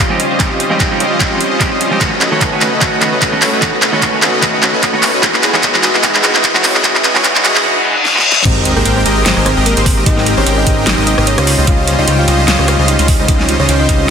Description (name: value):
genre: future bass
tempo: 149 BPM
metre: 4/4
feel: swing 55% on 16ths, half-time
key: Ab major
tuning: A4 = 439 Hz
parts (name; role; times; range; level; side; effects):
- ethereal airy pad; sustained chords; 0.0-14.1 s; C3 to A4; -27 LUFS; equal; none
- supersaw chords; riff; 0.0-14.1 s; G3 to Ab5; -15 LUFS; equal; sidechain pumping, low-pass filter
- dubstep drum kit; drums; 0.0-14.0 s; crash cymbal, handclaps, hi-hat, rim click, snare drum; -14 LUFS; right 1 dB; studio reverb
- electronic kick drum; drums; 0.0-14.0 s; none; -16 LUFS; equal; studio reverb
- riser, reverse cymbal and sub drop; sound effects; 0.6-10.1 s; none; -20 LUFS; left 2 dB; none
- clean electric guitar; accompaniment; 0.1-8.2 s; D#3 to G4; -19 LUFS; right 2 dB; sidechain pumping, dub echo
- thumb-piano-like synth pluck; melody; 8.5-14.1 s; Bb3 to F5; -18 LUFS; equal; chorus, sidechain pumping, dub echo
- fat analog bass; bass; 8.5-14.1 s; Ab1 to Db2; -15 LUFS; equal; sidechain pumping
room: wet lush hall reverb, RT60 1.9 s, digital ambience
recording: dense, heavily limited modern master, high-pass filter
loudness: -9 LUFS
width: side -7 dB against mid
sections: 0.0-8.5 A section; 8.5-14.1 B section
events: build-up 0.0-8.5; drum fill 0.0-7.6, 8.0-8.5; filter sweep 0.0-8.5; riser 0.6-8.5; reverse cymbal 7.6-8.5; drop 8.5-14.1; impact 8.5-10.1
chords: 0.0 Dbmaj9#11; 2.0 B9; 5.2 Emaj9; 8.5 Abmaj9; 11.5 Dbmaj9#11